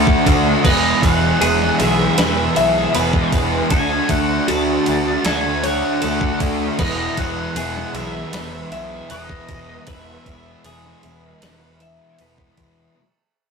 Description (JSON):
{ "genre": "rock, shoegaze and dream pop", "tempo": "78 BPM", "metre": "4/4", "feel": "straight", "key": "unclear", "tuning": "A4 = 440 Hz", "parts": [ { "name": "twelve-string electric guitar", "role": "arpeggios", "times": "0.0-13.0 s", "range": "F#4 to E5", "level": "-24 LUFS", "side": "left 1 dB", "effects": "none" }, { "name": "raw garage guitar", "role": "riff", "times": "0.0-13.0 s", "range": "E2 to G#4", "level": "-22 LUFS", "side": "right 4 dB", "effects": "overdrive" }, { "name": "thick fuzz guitar", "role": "riff", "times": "0.0-13.0 s", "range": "E2 to D4", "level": "-22 LUFS", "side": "left 3 dB", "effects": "distortion" }, { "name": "picked electric bass", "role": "bass", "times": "0.0-12.9 s", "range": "E1 to D2", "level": "-26 LUFS", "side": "equal", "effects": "none" }, { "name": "gated 80s digital drum machine", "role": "drums", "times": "0.1-12.8 s", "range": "crash cymbal, kick drum, ride cymbal, snare drum", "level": "-22 LUFS", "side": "right 1 dB", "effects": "gated reverb, gated reverb snare, overdrive" }, { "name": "octave-fuzz lead guitar", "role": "melody", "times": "0.6-12.2 s", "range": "D#5 to A5", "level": "-26 LUFS", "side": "equal", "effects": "distortion" } ], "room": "wet studio reverb, RT60 0.5 s", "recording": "rough rehearsal-room recording, tube saturation", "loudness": "-15 LUFS", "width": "side -5 dB against mid", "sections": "0.0-13.0 A section", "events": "fade-out 0.0-13.0", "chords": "0.0 D; 0.6 E; 3.7 Dmaj7; 6.8 E" }